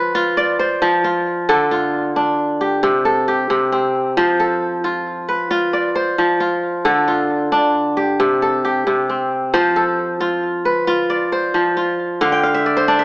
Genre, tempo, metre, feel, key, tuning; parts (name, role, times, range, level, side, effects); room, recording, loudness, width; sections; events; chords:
west african traditional; 90 BPM (dotted quarters); 12/8; straight; F lydian; A4 = 440 Hz
kora; solo; 0.0-13.0 s; C3 to G5; -15 LUFS; equal; tape echo
moderate recital hall reverb, RT60 1.5 s; small speaker sound; -15 LUFS; side -22 dB against mid
0.0-13.0 A section
kora fill 12.2-13.0
0.0 F; 1.5 Dm; 2.8 C5; 4.2 F; 6.8 Dm; 8.2 C5; 9.5 F; 12.2 Dm